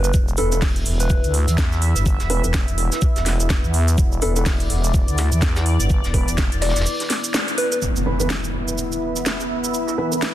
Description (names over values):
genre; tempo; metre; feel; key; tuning
bass house; 125 BPM; 4/4; swing 59% on 16ths; unclear; A4 = 438 Hz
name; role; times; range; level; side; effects
soft struck synth lead; melody; 0.0-1.3, 4.2-7.8 s; A4 to D5; -27 LUFS; left 2 dB; chorus, tape echo
growling FM bass; bass; 0.0-6.9 s; E1 to E2; -20 LUFS; equal; tube saturation, sidechain pumping
garage drum kit; drums; 0.0-10.3 s; hi-hat, shaker, snare drum; -25 LUFS; right 1 dB; none
sweeping resonant pad; sustained chords; 0.1-10.3 s; B3 to E5; -28 LUFS; equal; chorus, sidechain pumping
electronic kick drum; drums; 0.1-6.5 s; none; -19 LUFS; equal; overdrive
soft brush drum kit; drums; 0.1-10.3 s; hi-hat, shaker, snare drum; -32 LUFS; equal; sidechain pumping on hats, high-pass filter on hats, low-pass filter on hats, high-pass filter on snare, low-pass filter on snare, sidechain pumping on perc, high-pass filter on perc, low-pass filter on perc, high-pass filter on room, low-pass filter on room
dark concert grand piano; stabs; 0.4-10.2 s; E3 to B4; -28 LUFS; right 2 dB; sidechain pumping, low-pass filter, tape echo
impact; sound effects; 7.8-9.7 s; none; -26 LUFS; equal; none
warbly tape-like pad; texture; 8.4-10.3 s; B3 to B5; -28 LUFS; equal; chorus, built-in reverb, phaser, sidechain pumping
room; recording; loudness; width
small room reverb; dense, heavily limited modern master; -17 LUFS; side -13 dB against mid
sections
0.0-7.8 A section; 7.8-10.3 B section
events
band accent 7.3; impact 7.8-9.7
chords
0.0 E5